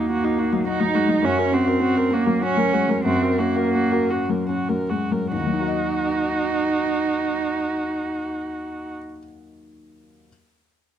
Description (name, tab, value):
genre	neoclassical piano and strings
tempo	70-107 BPM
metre	3/4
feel	rubato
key	Eb dorian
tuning	A4 = 440 Hz
part	muted cello	second line	0.0-8.9 s	Bb3 to Eb4	-22 LUFS	right 3 dB	none
part	felt-muted upright piano	accompaniment	0.0-10.3 s	Eb2 to Eb5	-24 LUFS	left 3 dB	none
part	muted viola	accompaniment	0.0-8.9 s	Eb4 to Bb4	-27 LUFS	right 1 dB	none
room	light reverb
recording	close, detailed microphones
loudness	-19 LUFS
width	side -10 dB against mid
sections	0.0-5.3 A section; 5.3-10.3 B section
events	slowing down 0.4-5.3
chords	0.0 Ebm; 1.2 Gb; 5.3 Ebm